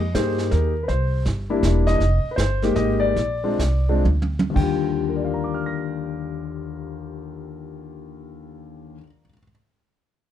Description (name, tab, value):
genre	jazz piano trio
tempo	113-162 BPM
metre	3/4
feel	swing 65% on 8ths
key	Eb major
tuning	A4 = 440 Hz
part	warm concert grand piano	melody	0.0-9.5 s	Eb2 to Bb6	-24 LUFS	left 4 dB	none
part	upright bass	bass	0.0-9.0 s	E1 to G2	-22 LUFS	right 1 dB	none
part	vintage brush drum kit	drums	0.1-5.1 s	brushed snare drum, crash cymbal, hi-hat, kick drum, snare drum, toms	-27 LUFS	right 3 dB	none
room	light reverb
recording	dark, warm production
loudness	-19 LUFS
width	side -10 dB against mid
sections	0.0-4.6 A section; 4.6-7.7 B section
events	slowing down 2.0-4.6; drum fill 4.0-4.6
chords	0.0 Fm11; 0.9 C9; 2.0 Fm11; 3.2 Bb9; 4.6 Ebmaj9